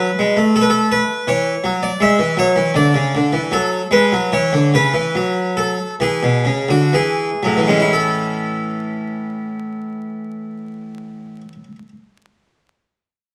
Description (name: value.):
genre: classical, baroque-style suite movement for harpsichord.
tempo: 58-84 BPM.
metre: 4/4.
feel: rubato.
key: A major.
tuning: A4 = 436 Hz.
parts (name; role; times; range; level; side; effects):
harpsichord; solo; 0.0-11.9 s; A2 to E5; -18 LUFS; equal; none.
room: wet stone room reverb, RT60 1.3 s.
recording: vinyl crackle.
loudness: -17 LUFS.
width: mono.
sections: 0.0-7.9 A section; 7.9-11.8 B section.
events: slowing down 0.0-7.9.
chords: 0.0 N.C.; 1.3 Esus2; 2.7 D; 4.3 B9sus4/C#; 6.0 E; 7.9 A.